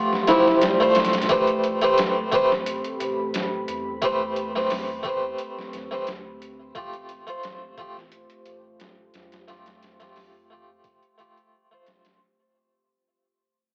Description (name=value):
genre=trip hop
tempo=88 BPM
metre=4/4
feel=swing 54% on 16ths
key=unclear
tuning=A4 = 439 Hz
part: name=harpsichord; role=accompaniment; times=0.0-12.2 s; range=F3 to C5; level=-24 LUFS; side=equal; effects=tremolo, low-pass filter, cassette tape, tape echo
part: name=deep dark ambient pad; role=sustained chords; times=0.0-12.2 s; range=F3 to C6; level=-34 LUFS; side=equal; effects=chorus, built-in reverb, vintage 12-bit sampler grit, cassette tape
part: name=trip hop sampler-style drum kit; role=drums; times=0.1-12.2 s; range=hi-hat, kick drum, snare drum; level=-33 LUFS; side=equal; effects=overdrive, cassette tape
part: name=flamenco guitar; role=arpeggios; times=0.3-1.3 s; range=G3 to E4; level=-26 LUFS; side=equal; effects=vintage 12-bit sampler grit, cassette tape, analog delay
part: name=warm sub bass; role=bass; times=1.0-12.2 s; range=G1 to F2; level=-52 LUFS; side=equal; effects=none
room=moderate spring reverb, RT60 2.9 s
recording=home recording on cassette, vinyl crackle, AM radio sound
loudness=-23 LUFS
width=mono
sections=0.0-12.2 A section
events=fade-out 0.0-12.2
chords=0.0 Fadd9; 1.3 Am9; 6.8 Fadd9/A